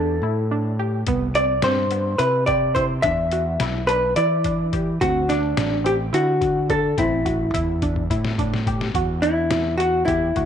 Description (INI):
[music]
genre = progressive instrumental, band music in an uneven meter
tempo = 213 BPM (eighths)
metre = 7/8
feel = straight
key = E minor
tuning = A4 = 440 Hz
[part]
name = vintage hollow-body jazz guitar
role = melody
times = 0.0-10.5 s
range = D4 to E5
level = -21 LUFS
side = equal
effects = slapback echo
[part]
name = tight sequenced synth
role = arpeggios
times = 0.0-10.5 s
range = B3 to G4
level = -28 LUFS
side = right 1 dB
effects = chorus, phaser
[part]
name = overdriven fingered electric bass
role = bass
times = 0.0-10.5 s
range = A1 to E3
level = -24 LUFS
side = right 1 dB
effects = none
[part]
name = trip hop sampler-style drum kit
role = drums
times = 1.1-10.5 s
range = hi-hat, kick drum, snare drum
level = -28 LUFS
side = left 2 dB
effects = none
[sound]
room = light reverb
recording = 1960s-style stereo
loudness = -18 LUFS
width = side -8 dB against mid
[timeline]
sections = 0.0-9.0 A section; 9.0-10.5 B section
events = drum fill 7.0-9.0; hollow-body jazz guitar solo 9.0-10.5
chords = 0.0 A7(no3); 1.1 Cmaj7; 3.0 Em7; 5.0 D7; 7.0 Am7; 9.0 Emadd9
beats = 0.23 0.51 0.79 | 1.07 1.35 1.64 1.92 2.20 2.48 2.76 | 3.04 3.32 3.60 3.89 4.17 4.45 4.73 | 5.01 5.29 5.57 5.86 6.14 6.42 6.70 | 6.98 7.26 7.54 7.83 8.11 8.39 8.67 | 8.95 9.23 9.52 9.80 10.08 10.36